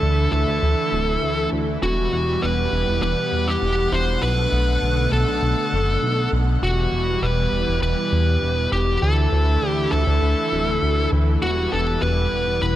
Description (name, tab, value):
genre	synthwave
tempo	100 BPM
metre	4/4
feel	straight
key	E minor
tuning	A4 = 437 Hz
part	fuzz lead guitar	melody	0.0-12.8 s	F#4 to C5	-23 LUFS	equal	distortion, digital delay
part	lush unison pad	sustained chords	0.0-12.8 s	B2 to F#5	-25 LUFS	equal	chorus
part	chorused synth bass	bass	0.0-12.7 s	D1 to E2	-21 LUFS	equal	none
room	light reverb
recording	none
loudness	-18 LUFS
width	side -13 dB against mid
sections	0.0-12.8 A section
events	none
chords	0.0 Dsus2; 1.8 Emadd9; 4.2 Bm7; 6.6 Emadd9; 9.0 Dsus2; 11.4 Emadd9